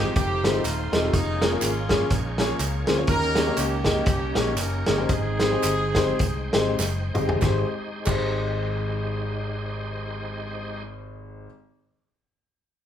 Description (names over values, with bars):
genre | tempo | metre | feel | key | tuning
uptempo gospel | 92-123 BPM | 4/4 | swing 58% on 8ths | Ab major | A4 = 440 Hz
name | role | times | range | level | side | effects
warm horn section | melody | 0.0-6.8 s | Ab3 to Bb4 | -28 LUFS | right 1 dB | none
clear concert grand piano | accompaniment | 0.0-11.5 s | Ab1 to Eb5 | -28 LUFS | left 3 dB | none
bright tonewheel organ | sustained chords | 0.0-10.8 s | Ab3 to G5 | -35 LUFS | right 1 dB | slow rotary speaker, overdrive, chorus vibrato
fingered electric bass | bass | 0.0-11.5 s | Eb1 to Eb2 | -29 LUFS | equal | none
warm soul drum kit | drums | 0.2-8.3 s | crash cymbal, hi-hat, kick drum, snare drum, toms | -24 LUFS | equal | none
tambourine and handclaps | percussion | 0.2-8.3 s | none | -36 LUFS | right 5 dB | none
room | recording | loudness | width
moderate large studio reverb, RT60 0.9 s | band playing live in one room | -22 LUFS | side -10 dB against mid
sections
0.0-7.4 A section; 7.4-12.6 B section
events
slowing down 3.1-7.4; drum fill 6.8-7.4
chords
0.2 F7; 1.1 Bbm7/F; 3.1 Eb7; 5.1 Abmaj7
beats
0.16 0.65 | 1.14 1.62 2.11 2.60 | 3.08 3.57 4.07 4.57 | 5.09 5.64 6.20 6.79 | 7.42 8.07 8.72 9.37 | 10.02 10.66 11.31